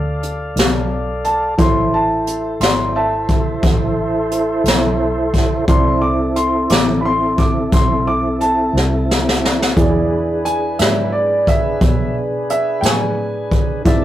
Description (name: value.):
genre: slow blues.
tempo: 59 BPM (dotted quarters).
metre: 12/8.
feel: straight.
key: A harmonic minor.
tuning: A4 = 441 Hz.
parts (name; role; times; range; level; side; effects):
warm upright piano; second line; 0.0-14.0 s; D5 to D6; -20 LUFS; equal; none.
dark baby grand piano; accompaniment; 0.0-14.0 s; G#3 to A5; -22 LUFS; right 2 dB; none.
tonewheel organ; sustained chords; 0.0-14.0 s; C4 to A5; -20 LUFS; equal; slow rotary speaker.
vintage muted fingered electric bass; bass; 0.0-14.0 s; G#1 to B2; -23 LUFS; equal; none.
jazz brush drum kit; drums; 0.2-14.0 s; hi-hat, kick drum, snare drum; -17 LUFS; equal; none.
room: light reverb.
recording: rough rehearsal-room recording, warm saturation.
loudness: -14 LUFS.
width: side -13 dB against mid.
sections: 0.0-14.0 A section.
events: upright piano solo 0.0-14.0; drum fill 8.7-9.8.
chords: 0.0 Dm; 1.6 Am; 9.8 E7.